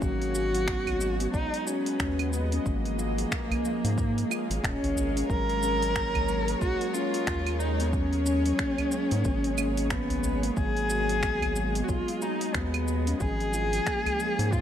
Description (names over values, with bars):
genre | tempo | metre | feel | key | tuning
organic downtempo | 91 BPM | 4/4 | swing 59% on 16ths | unclear | A4 = 442 Hz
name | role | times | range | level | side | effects
dark cello | melody | 0.0-14.6 s | A#3 to A#4 | -29 LUFS | equal | ping-pong delay
bowed-like drone | sustained chords | 0.0-14.6 s | G#3 to F#5 | -34 LUFS | left 1 dB | built-in reverb, sidechain pumping
steel tongue drum | arpeggios | 0.0-14.5 s | E#3 to F#4 | -34 LUFS | equal | ping-pong delay
round analog bass | bass | 0.0-14.6 s | D#1 to G#2 | -30 LUFS | equal | sidechain pumping
deep house drum kit | drums | 0.0-14.6 s | claves, finger snaps, hi-hat, shaker | -35 LUFS | right 1 dB | none
electronic kick drum | drums | 0.0-14.6 s | none | -32 LUFS | equal | none
udu | percussion | 0.9-14.2 s | none | -35 LUFS | equal | none
room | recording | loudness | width
light reverb, small room ambience | none | -25 LUFS | side -10 dB against mid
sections
0.0-14.6 A section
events
none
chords
0.0 C#7sus4/G#; 2.7 A#m7/G#; 5.3 G#9sus4; 10.6 C#7sus4/G#; 13.2 A#m7/G#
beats
| 0.02 0.68 1.34 2.00 | 2.66 3.32 3.98 4.64 | 5.29 5.96 6.61 7.27 | 7.93 8.59 9.25 9.91 | 10.57 11.23 11.89 12.55 | 13.21 13.87 14.53